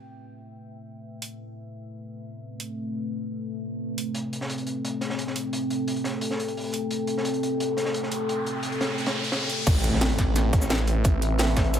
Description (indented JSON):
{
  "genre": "dark technical drum and bass",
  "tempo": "174 BPM",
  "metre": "4/4",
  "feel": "straight",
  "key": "A minor",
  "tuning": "A4 = 440 Hz",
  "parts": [
    { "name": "deep dark ambient pad", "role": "sustained chords", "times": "0.1-11.8 s", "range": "A3 to G5", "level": "-29 LUFS", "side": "left 1 dB", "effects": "chorus, built-in reverb, sidechain pumping" },
    { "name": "drum and bass drum kit", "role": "drums", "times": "1.2-11.8 s", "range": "crash cymbal, hi-hat, shaker, snare drum", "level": "-28 LUFS", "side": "equal", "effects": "overdrive" },
    { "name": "crunchy breakbeat drum kit", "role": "drums", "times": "4.1-11.8 s", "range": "hi-hat, snare drum", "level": "-33 LUFS", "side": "equal", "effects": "high-pass filter on hats, high-pass filter on snare, high-pass filter on room" },
    { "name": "riser and impact", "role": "sound effects", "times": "7.7-11.0 s", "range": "none", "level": "-31 LUFS", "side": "equal", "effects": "none" },
    { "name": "snarling distorted saw bass", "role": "bass", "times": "9.7-11.8 s", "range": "A1", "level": "-24 LUFS", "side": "equal", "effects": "overdrive, sidechain pumping" },
    { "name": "electronic kick drum", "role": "drums", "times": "9.7-11.6 s", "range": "none", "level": "-22 LUFS", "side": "equal", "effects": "overdrive" }
  ],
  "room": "light reverb",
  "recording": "none",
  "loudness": "-24 LUFS",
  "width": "side -9 dB against mid",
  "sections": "0.0-9.7 A section; 9.7-11.8 B section",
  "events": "filter sweep on ambient pad 0.0-9.7; riser 7.7-9.7; drop 9.7-11.8; impact 9.7-11.0",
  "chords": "0.0 Amadd9"
}